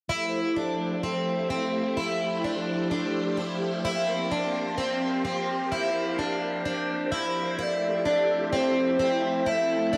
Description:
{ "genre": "dream pop", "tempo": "64 BPM", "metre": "4/4", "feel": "straight", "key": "F major", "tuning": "A4 = 443 Hz", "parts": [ { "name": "phased string machine", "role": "sustained chords", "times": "0.1-10.0 s", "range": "F3 to C5", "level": "-32 LUFS", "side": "equal", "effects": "ensemble chorus, phaser" }, { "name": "picked plugged-in twelve-string acoustic guitar", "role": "arpeggios", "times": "0.1-10.0 s", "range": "C4 to E4", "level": "-30 LUFS", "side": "equal", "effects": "lush chorus, tape echo" }, { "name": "hollow clarinet-like synth lead", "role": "melody", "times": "7.6-10.0 s", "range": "C5 to E5", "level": "-28 LUFS", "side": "equal", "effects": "chorus, tape echo" } ], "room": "light reverb", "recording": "dry, gritty hardware recording", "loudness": "-27 LUFS", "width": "mono", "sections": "0.1-7.6 A section; 7.6-10.0 B section", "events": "none", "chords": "0.1 Fmaj9; 3.8 C7sus4; 7.6 Fmaj9" }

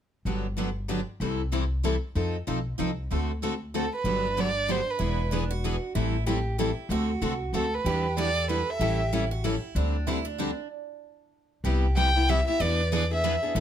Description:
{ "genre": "acoustic string swing (jazz manouche)", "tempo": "190 BPM", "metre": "3/4", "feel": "swing 60% on 8ths", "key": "G major", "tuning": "A4 = 440 Hz", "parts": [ { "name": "picked steel-string acoustic guitar", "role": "accompaniment", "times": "0.3-13.6 s", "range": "C3 to A4", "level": "-31 LUFS", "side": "left 7 dB", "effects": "none" }, { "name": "picked steel-string acoustic guitar", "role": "accompaniment", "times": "0.3-13.6 s", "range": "C3 to B4", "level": "-33 LUFS", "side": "right 8 dB", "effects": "none" }, { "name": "upright bass", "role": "bass", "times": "0.3-13.6 s", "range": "E1 to F2", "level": "-28 LUFS", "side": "equal", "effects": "none" }, { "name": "dark violin", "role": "melody", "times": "3.8-5.3, 7.6-9.1, 12.0-13.4 s", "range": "A4 to G5", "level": "-27 LUFS", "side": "right 2 dB", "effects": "none" }, { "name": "picked steel-string acoustic guitar", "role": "second line", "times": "4.0-13.6 s", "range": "D4 to B4", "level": "-35 LUFS", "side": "right 4 dB", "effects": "none" } ], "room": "light reverb", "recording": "close, detailed microphones", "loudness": "-25 LUFS", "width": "side -9 dB against mid", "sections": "0.3-4.1 A section; 4.1-11.7 B section; 11.7-13.6 C section", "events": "stop 10.7-11.7", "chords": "0.3 Gmaj7; 1.2 C6; 2.2 F7; 3.1 D7; 4.1 Gmaj7; 5.0 E7; 6.0 Am7; 6.9 D7; 7.9 Em7; 8.8 A7; 9.8 D7sus4; 10.7 N.C.; 11.7 Cmaj7; 12.6 E7" }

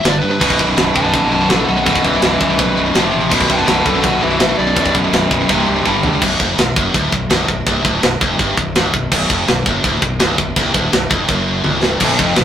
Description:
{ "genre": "heavy metal", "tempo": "166 BPM", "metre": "4/4", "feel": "straight", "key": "unclear", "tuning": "A4 = 441 Hz", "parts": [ { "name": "high-gain lead guitar", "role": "melody", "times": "0.0-4.9 s", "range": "A4 to A5", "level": "-18 LUFS", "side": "left 1 dB", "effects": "distortion" }, { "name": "heavy high-gain guitar", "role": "riff", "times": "0.0-12.4 s", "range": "B1 to G3", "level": "-19 LUFS", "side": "left 1 dB", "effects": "distortion" }, { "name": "fuzz fingered electric bass", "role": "bass", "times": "0.0-12.4 s", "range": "B0 to G2", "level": "-22 LUFS", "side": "equal", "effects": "overdrive" }, { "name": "tight metal drum kit", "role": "drums", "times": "0.0-12.4 s", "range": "china cymbal, crash cymbal, kick drum, snare drum, toms", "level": "-16 LUFS", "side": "equal", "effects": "none" }, { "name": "distorted electric guitar", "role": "riff", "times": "0.4-6.2, 12.0-12.4 s", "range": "B1 to G3", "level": "-16 LUFS", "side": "equal", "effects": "overdrive" } ], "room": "light reverb", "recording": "rough rehearsal-room recording, tube saturation", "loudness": "-12 LUFS", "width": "side -9 dB against mid", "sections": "0.0-6.2 A section; 6.2-12.4 B section", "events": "lead electric guitar solo 0.0-6.2; drum fill 5.9-6.2, 11.7-12.0", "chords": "0.1 G5; 0.4 B5; 3.0 F5; 3.3 B5; 5.5 C5; 5.9 G5; 6.2 Bm" }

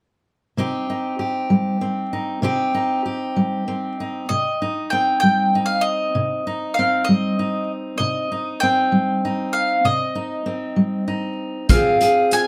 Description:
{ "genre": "indie folk with a building arrangement", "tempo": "65 BPM (dotted quarters)", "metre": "6/8", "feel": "straight", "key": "C minor", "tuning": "A4 = 441 Hz", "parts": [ { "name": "fingerpicked steel-string acoustic guitar", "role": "accompaniment", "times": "0.6-12.5 s", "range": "C3 to Ab4", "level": "-24 LUFS", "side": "equal", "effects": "none" }, { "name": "mandolin", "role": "melody", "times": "4.3-12.5 s", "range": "Eb5 to Ab5", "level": "-22 LUFS", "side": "equal", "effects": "none" }, { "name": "unplugged drum kit", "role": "drums", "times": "11.7-12.5 s", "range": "hi-hat, kick drum", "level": "-20 LUFS", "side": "equal", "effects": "none" } ], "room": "moderate small room reverb, RT60 0.5 s", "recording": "band playing live in one room", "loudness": "-21 LUFS", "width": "mono", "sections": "0.6-4.3 A section; 4.3-12.5 B section", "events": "none", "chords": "0.6 Cm; 11.7 Fm" }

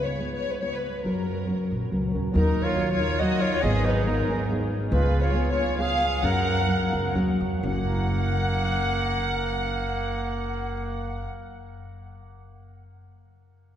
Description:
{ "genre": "mexican folk, mariachi", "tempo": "122-141 BPM", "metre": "3/4", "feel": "swing 54% on 8ths", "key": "F# major", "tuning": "A4 = 442 Hz", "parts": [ { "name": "dark studio violin section", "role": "melody", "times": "0.0-11.3 s", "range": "A#4 to F#5", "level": "-28 LUFS", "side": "left 1 dB", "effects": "none" }, { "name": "nylon-string guitar", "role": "accompaniment", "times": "0.0-11.4 s", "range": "G#2 to B4", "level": "-29 LUFS", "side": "equal", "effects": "none" }, { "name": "upright bass", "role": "bass", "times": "0.0-11.2 s", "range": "F#1 to F#2", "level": "-28 LUFS", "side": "equal", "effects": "none" }, { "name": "bright trumpet", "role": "second line", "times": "2.4-11.2 s", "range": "A#3 to A#4", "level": "-31 LUFS", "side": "right 3 dB", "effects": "none" } ], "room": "wet cathedral reverb, RT60 5.1 s", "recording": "recorded in a church or concert hall", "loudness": "-23 LUFS", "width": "side -10 dB against mid", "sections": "0.0-2.3 A section; 2.3-7.6 B section; 7.6-10.6 C section", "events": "slowing down 4.9-7.6", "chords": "0.0 C#7; 1.1 F#; 2.3 D#m; 3.6 G#m; 4.9 C#7; 6.2 F#" }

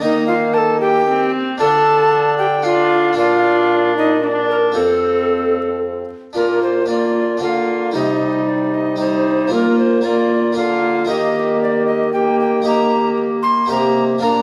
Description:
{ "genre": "classical, renaissance-style consort dance", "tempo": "114 BPM", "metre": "3/4", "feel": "straight", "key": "unclear", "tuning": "A4 = 440 Hz", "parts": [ { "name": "mellow tenor recorder", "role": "melody", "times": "0.0-14.4 s", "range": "A4 to C6", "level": "-22 LUFS", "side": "equal", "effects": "none" }, { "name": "mellow hollow tenor recorder", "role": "second line", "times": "0.0-14.4 s", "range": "D4 to Bb4", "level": "-21 LUFS", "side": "equal", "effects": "none" }, { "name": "harpsichord", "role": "accompaniment", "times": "0.0-14.4 s", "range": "F2 to G4", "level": "-26 LUFS", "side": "equal", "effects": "none" }, { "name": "rich viola", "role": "accompaniment", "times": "0.0-14.4 s", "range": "G3 to D4", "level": "-25 LUFS", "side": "equal", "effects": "none" }, { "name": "mellow bassoon", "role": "bass", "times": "0.0-14.4 s", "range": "F2 to Eb3", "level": "-24 LUFS", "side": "equal", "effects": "none" } ], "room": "moderate recital hall reverb, RT60 1.6 s", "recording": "vinyl crackle, lossy compression artefacts", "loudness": "-16 LUFS", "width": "mono", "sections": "0.0-6.4 A section; 6.4-14.4 B section", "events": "none", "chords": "0.0 Eb; 1.6 Dm; 3.2 Bb; 4.8 F; 6.4 Bb; 7.9 Cm; 9.5 Bb; 11.1 Eb" }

